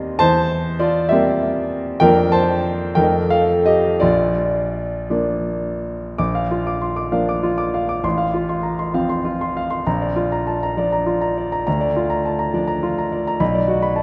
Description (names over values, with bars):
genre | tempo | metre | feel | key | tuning
classical, romantic character piece for solo piano | 54-70 BPM (dotted quarters) | 6/8 | rubato | Bb major | A4 = 437 Hz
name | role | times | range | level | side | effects
warm grand piano | solo | 0.0-14.0 s | A1 to D6 | -19 LUFS | equal | none
room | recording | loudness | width
wet concert hall reverb, RT60 2.4 s | none | -19 LUFS | mono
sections
0.0-6.2 A section; 6.2-14.0 A section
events
none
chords
0.2 C7/E; 2.0 Bb/F; 3.0 F7; 4.0 Bb; 8.0 F/A; 9.9 Bb; 11.7 Bb/D; 13.4 Bm